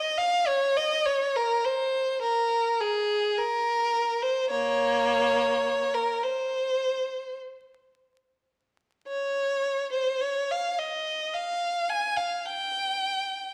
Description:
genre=classical, free, expressive piece for unaccompanied violin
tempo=52 BPM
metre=4/4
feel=rubato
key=Bb dorian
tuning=A4 = 440 Hz
part: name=rich violin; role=solo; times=0.0-13.5 s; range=Bb3 to Ab5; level=-27 LUFS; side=equal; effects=none
room=moderate recital hall reverb, RT60 1.6 s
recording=vinyl crackle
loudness=-27 LUFS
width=mono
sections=0.0-13.5 A section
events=none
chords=none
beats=1.05 2.23 3.38 | 4.50 5.65 6.80 7.96 | 9.07 10.21 11.34 12.45

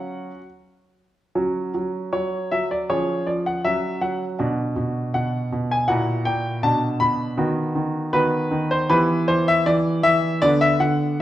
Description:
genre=classical-period piano sonatina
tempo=79 BPM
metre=2/4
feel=rubato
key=unclear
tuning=A4 = 440 Hz
part: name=clear baby grand piano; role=solo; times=0.0-11.2 s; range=A#2 to B5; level=-19 LUFS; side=equal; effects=none
room=wet recital hall reverb, RT60 1.4 s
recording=worn, warbling old tape, cassette tape, warbly pitch drift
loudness=-19 LUFS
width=side -13 dB against mid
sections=0.0-1.3 A section; 1.3-11.2 A section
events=none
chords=0.0 F#5; 2.9 C#/E#; 3.6 F#5; 4.4 Bm; 5.9 F#7/A#; 6.6 Bm; 7.4 B/D#; 8.9 Em; 10.4 Bm/D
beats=0.54 | 1.34 2.13 | 2.90 3.65 | 4.39 5.14 | 5.88 6.63 | 7.38 8.13 | 8.90 9.65 | 10.41

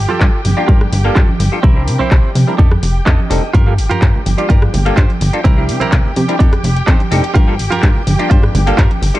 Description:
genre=filtered disco house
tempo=126 BPM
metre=4/4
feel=straight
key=G minor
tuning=A4 = 444 Hz
part: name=rich symphonic string section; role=sustained chords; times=0.0-9.2 s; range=G4 to G5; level=-24 LUFS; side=right 1 dB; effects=sidechain pumping, low-pass filter
part: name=plucky analog bass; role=bass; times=0.0-9.1 s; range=F1 to C3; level=-15 LUFS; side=equal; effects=tube saturation, sidechain pumping, low-pass filter
part: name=direct-recorded clean electric guitar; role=riff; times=0.1-9.1 s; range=C4 to Eb5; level=-21 LUFS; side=right 5 dB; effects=vintage 12-bit sampler grit, sidechain pumping, low-pass filter
part: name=congas and egg shaker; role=percussion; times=0.1-9.2 s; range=none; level=-24 LUFS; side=right 4 dB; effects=sidechain pumping on perc, low-pass filter on perc
part: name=electronic kick drum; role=drums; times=0.2-8.9 s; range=none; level=-11 LUFS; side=equal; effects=none
part: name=house drum kit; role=drums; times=0.2-9.2 s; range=handclaps, hi-hat, rim click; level=-22 LUFS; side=left 1 dB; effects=sidechain pumping on hats
part: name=bright clav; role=accompaniment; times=0.6-9.2 s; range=G3 to Bb4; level=-20 LUFS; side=left 1 dB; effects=phaser, sidechain pumping, low-pass filter
room=little or no reverb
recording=nothing above 11.0 kHz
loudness=-10 LUFS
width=side -16 dB against mid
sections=0.0-9.2 A section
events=clean electric guitar fill 2.8-3.5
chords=0.0 Gm7; 1.6 C7; 2.6 F13; 3.5 Gm7; 5.5 C7; 6.4 F13; 7.4 Gm7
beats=0.21 0.69 1.16 | 1.64 2.12 2.59 3.07 | 3.54 4.02 4.50 4.97 | 5.45 5.93 6.40 6.88 | 7.36 7.83 8.31 8.78

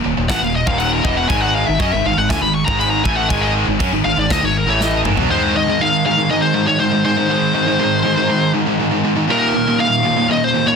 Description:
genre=heavy metal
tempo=120 BPM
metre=4/4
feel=straight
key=unclear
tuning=A4 = 440 Hz
part: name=distorted electric guitar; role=riff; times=0.0-10.8 s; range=Eb2 to Db4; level=-22 LUFS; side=equal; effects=overdrive
part: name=heavy high-gain guitar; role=riff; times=0.0-10.8 s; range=Eb2 to Db4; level=-20 LUFS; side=right 12 dB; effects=distortion
part: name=scooped high-gain guitar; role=riff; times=0.0-10.8 s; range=Eb2 to Db4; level=-22 LUFS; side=left 11 dB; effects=distortion
part: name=fingered electric bass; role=bass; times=0.0-5.3 s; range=Eb1 to Gb2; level=-22 LUFS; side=equal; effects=none
part: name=high-gain lead guitar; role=melody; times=0.3-10.8 s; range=Bb4 to Db6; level=-18 LUFS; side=left 2 dB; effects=distortion
part: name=modern studio drum kit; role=drums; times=0.3-5.3 s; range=crash cymbal, kick drum, snare drum, toms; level=-22 LUFS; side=left 1 dB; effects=none
room=studio reverb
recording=dense, heavily limited modern master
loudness=-14 LUFS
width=side -6 dB against mid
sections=0.0-5.3 A section; 5.3-10.8 B section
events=lead electric guitar solo 0.0-5.3; drum fill 4.8-5.3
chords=0.0 Ebm; 1.3 Ab5; 5.3 Ab; 9.3 Eb5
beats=0.29 0.80 | 1.30 1.80 2.30 2.80 | 3.30 3.80 4.30 4.80 | 5.30 5.80 6.30 6.80 | 7.30 7.80 8.29 8.79 | 9.29 9.79 10.29

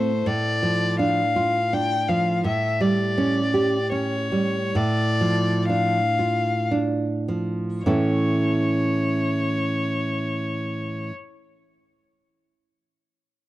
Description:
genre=romantic duo for violin and classical guitar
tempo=50-84 BPM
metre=3/4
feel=rubato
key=unclear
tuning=A4 = 440 Hz
part: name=rich violin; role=melody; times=0.0-11.1 s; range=C5 to G5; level=-25 LUFS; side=left 3 dB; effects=none
part: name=nylon-string guitar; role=accompaniment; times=0.0-11.1 s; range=A2 to C#5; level=-22 LUFS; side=right 1 dB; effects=none
room=studio ambience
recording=dry, close 1970s-style studio recording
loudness=-20 LUFS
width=side -15 dB against mid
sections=0.0-7.9 A section; 7.9-13.5 B section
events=slowing down 1.4-7.9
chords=0.3 Dm/A; 2.4 A7; 4.8 Dm/A; 7.9 A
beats=| 0.26 0.99 1.72 | 2.44 3.17 3.92 | 4.75 5.69 6.72 | 7.86 8.93 10.02

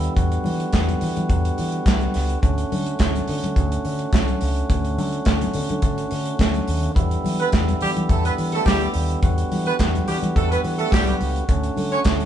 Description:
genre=disco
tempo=106 BPM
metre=4/4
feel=straight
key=E dorian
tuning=A4 = 440 Hz
part: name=percussive tonewheel organ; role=sustained chords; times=0.0-12.3 s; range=D3 to F#4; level=-26 LUFS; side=right 1 dB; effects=overdrive
part: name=picked electric bass with an envelope filter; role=bass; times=0.0-12.2 s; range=C2 to E3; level=-24 LUFS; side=equal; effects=none
part: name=modern studio drum kit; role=drums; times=0.0-12.3 s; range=handclaps, hi-hat, kick drum, snare drum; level=-22 LUFS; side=equal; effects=none
part: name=congas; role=percussion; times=0.4-12.3 s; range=none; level=-30 LUFS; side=left 3 dB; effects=none
part: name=warm horn section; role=stabs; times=7.4-12.0 s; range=G3 to C#5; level=-24 LUFS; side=right 3 dB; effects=none
room=moderate stone room reverb, RT60 1.0 s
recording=band playing live in one room, nothing above 10.8 kHz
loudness=-19 LUFS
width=side -10 dB against mid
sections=0.0-12.3 A section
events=none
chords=0.0 Em7; 2.4 Dmaj7; 7.0 Em7; 11.5 Dmaj7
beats=| 0.16 0.73 1.29 1.86 | 2.43 2.99 3.56 4.13 | 4.69 5.26 5.83 6.39 | 6.96 7.53 8.09 8.66 | 9.22 9.79 10.35 10.92 | 11.48 12.05

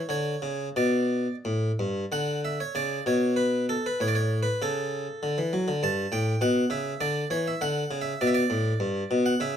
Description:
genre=classical, baroque-style suite movement for harpsichord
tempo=87-102 BPM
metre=3/4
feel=rubato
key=D major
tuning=A4 = 441 Hz
part: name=harpsichord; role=solo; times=0.0-9.6 s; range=G2 to A5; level=-24 LUFS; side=equal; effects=none
room=light reverb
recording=close, detailed microphones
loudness=-24 LUFS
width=side -8 dB against mid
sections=0.0-2.1 A section; 2.1-9.6 A section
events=none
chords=0.1 D5; 2.1 Bmadd9; 4.0 A; 5.2 D; 5.8 G; 7.6 D5; 8.8 G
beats=| 0.10 0.77 1.45 | 2.12 2.75 3.38 | 4.01 4.62 5.23 | 5.83 6.42 7.01 | 7.61 8.20 8.80 | 9.40

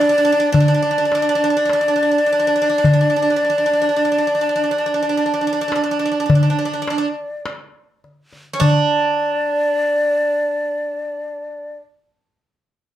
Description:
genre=Turkish makam ensemble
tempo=104 BPM (eighths)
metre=10/8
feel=straight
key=unclear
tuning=A4 = 440 Hz
part: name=breathy reedy ney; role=melody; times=0.0-11.7 s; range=D5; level=-18 LUFS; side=left 1 dB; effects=none
part: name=Greek bouzouki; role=second line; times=0.0-11.7 s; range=C#4 to D4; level=-21 LUFS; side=right 5 dB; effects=slapback echo
part: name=darbuka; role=percussion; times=0.5-9.1 s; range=none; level=-17 LUFS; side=left 2 dB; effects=none
room=moderate studio reverb, RT60 0.6 s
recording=none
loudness=-15 LUFS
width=side -12 dB against mid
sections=0.0-8.6 A section; 8.6-13.0 B section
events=none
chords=none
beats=0.54 1.11 1.69 2.27 | 2.84 3.42 4.00 4.57 5.15 5.72 6.30 6.88 7.45 8.03 | 8.61 9.18 9.76 10.34 10.91 11.49

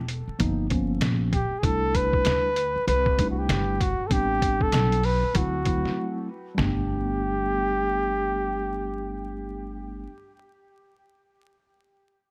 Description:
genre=hip hop, jazz-hop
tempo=97 BPM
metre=4/4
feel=swing 62% on 16ths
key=G major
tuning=A4 = 440 Hz
part: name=upright bass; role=bass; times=0.0-10.1 s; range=E1 to D2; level=-31 LUFS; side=equal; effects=none
part: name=lo-fi sampler-style drum kit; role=drums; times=0.1-6.8 s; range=hi-hat, kick drum, snare drum, toms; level=-30 LUFS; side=equal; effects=none
part: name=mellow tine electric piano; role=accompaniment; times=0.4-10.1 s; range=F3 to E4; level=-32 LUFS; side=equal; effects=none
part: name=breathy flugelhorn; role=melody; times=1.3-9.8 s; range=F#4 to B4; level=-29 LUFS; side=equal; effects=tape echo
room=little or no reverb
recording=vinyl crackle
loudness=-25 LUFS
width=mono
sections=0.0-6.6 A section; 6.6-9.1 B section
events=break 6.0-6.6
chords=0.4 G7alt; 1.6 C69; 4.1 Am11; 5.3 D9; 6.6 Gadd9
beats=0.39 1.01 | 1.63 2.25 2.87 3.49 | 4.11 4.72 5.34 5.96 | 6.58 7.20 7.82 8.44

